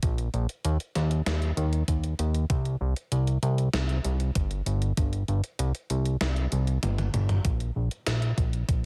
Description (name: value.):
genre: synthwave.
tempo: 97 BPM.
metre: 4/4.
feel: straight.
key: unclear.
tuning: A4 = 441 Hz.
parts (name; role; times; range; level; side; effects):
fat analog bass; bass; 0.0-8.9 s; G1 to Eb2; -28 LUFS; equal; tube saturation, sidechain pumping.
electronic kick drum; drums; 0.0-8.8 s; none; -29 LUFS; equal; none.
gated 80s digital drum machine; drums; 0.0-8.8 s; hi-hat, snare drum, toms; -35 LUFS; equal; gated reverb, gated reverb snare, high-pass filter on hats, high-pass filter on snare, high-pass filter on toms, high-pass filter on room.
room: little or no reverb.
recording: none.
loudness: -27 LUFS.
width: mono.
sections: 0.0-7.4 A section; 7.4-8.9 B section.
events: drum fill 6.8-7.4.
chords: none.